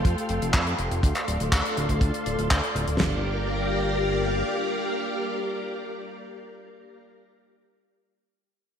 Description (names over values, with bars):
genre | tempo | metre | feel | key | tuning
italo disco | 122 BPM | 4/4 | straight | G minor | A4 = 439 Hz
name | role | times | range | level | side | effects
string machine, full ensemble | sustained chords | 0.0-7.0 s | G4 to C6 | -28 LUFS | left 1 dB | ensemble chorus
fat analog bass | bass | 0.0-4.4 s | D1 to F2 | -28 LUFS | equal | none
damped 70s drum kit | drums | 0.0-3.1 s | china cymbal, kick drum, snare drum, toms | -24 LUFS | equal | gated reverb
damped 70s drum kit | drums | 0.1-3.0 s | handclaps, hi-hat | -28 LUFS | equal | gated reverb
room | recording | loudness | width
wet lush hall reverb, RT60 1.7 s, small room reverb | bright 1980s-style digital production | -23 LUFS | side -8 dB against mid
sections
0.0-3.0 A section; 3.0-6.9 B section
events
none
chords
0.0 Fadd9; 1.0 Dm7; 3.0 Gm7